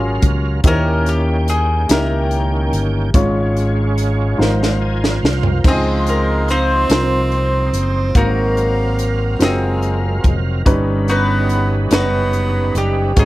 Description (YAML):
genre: slow gospel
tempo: 48 BPM (dotted quarters)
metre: 6/8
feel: straight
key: Db major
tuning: A4 = 444 Hz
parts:
  - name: bowl-back mandolin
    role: melody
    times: 0.0-13.2 s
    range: C4 to C5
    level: -22 LUFS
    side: left 2 dB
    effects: none
  - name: warm grand piano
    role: accompaniment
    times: 0.0-13.2 s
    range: G2 to F5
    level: -22 LUFS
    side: equal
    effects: none
  - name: overdriven tonewheel organ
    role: sustained chords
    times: 0.0-13.2 s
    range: Eb3 to Ab5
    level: -24 LUFS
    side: right 2 dB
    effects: slow rotary speaker, chorus vibrato
  - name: fingered electric bass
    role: bass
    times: 0.0-13.2 s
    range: F1 to Eb2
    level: -18 LUFS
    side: equal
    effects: none
  - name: crisp fusion drum kit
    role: drums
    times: 0.2-13.2 s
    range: crash cymbal, hi-hat, kick drum, snare drum, toms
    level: -17 LUFS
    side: equal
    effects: none
  - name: breathy tenor saxophone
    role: melody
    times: 5.7-13.2 s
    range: Gb3 to C4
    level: -21 LUFS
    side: right 2 dB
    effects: none
room: small room ambience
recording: none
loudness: -14 LUFS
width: side -17 dB against mid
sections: 0.0-5.6 A section; 5.6-13.2 B section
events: drum fill 4.4-5.6; tonewheel organ fill 4.4-5.6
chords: 0.0 Gbmaj7; 0.6 Eb7b9; 3.1 Db/Ab; 4.4 Ab69; 5.6 Dbmaj9; 8.2 Ab13; 10.7 Eb7alt/G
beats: | 0.64 1.89 | 3.15 4.40 | 5.65 6.90 | 8.15 9.41 | 10.66 11.91 | 13.17